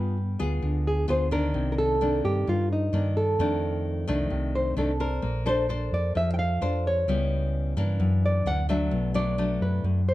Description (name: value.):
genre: bossa nova.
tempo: 130 BPM.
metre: 4/4.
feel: straight.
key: unclear.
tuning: A4 = 439 Hz.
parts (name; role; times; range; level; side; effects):
nylon-string guitar; melody; 0.0-10.1 s; Eb4 to G5; -28 LUFS; right 1 dB; plate reverb.
nylon-string guitar; accompaniment; 0.0-10.1 s; F2 to C5; -28 LUFS; left 2 dB; none.
hollow-body short-scale fingered electric bass; bass; 0.0-10.1 s; Bb1 to G2; -27 LUFS; right 1 dB; none.
room: light reverb.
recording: none.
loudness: -23 LUFS.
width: side -16 dB against mid.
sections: 0.0-10.1 A section.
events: none.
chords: 0.0 G7b9; 1.5 Cm9; 3.4 F6; 5.2 Bbmaj9; 7.1 C#m7b5; 8.0 F#7alt; 8.9 Bm7.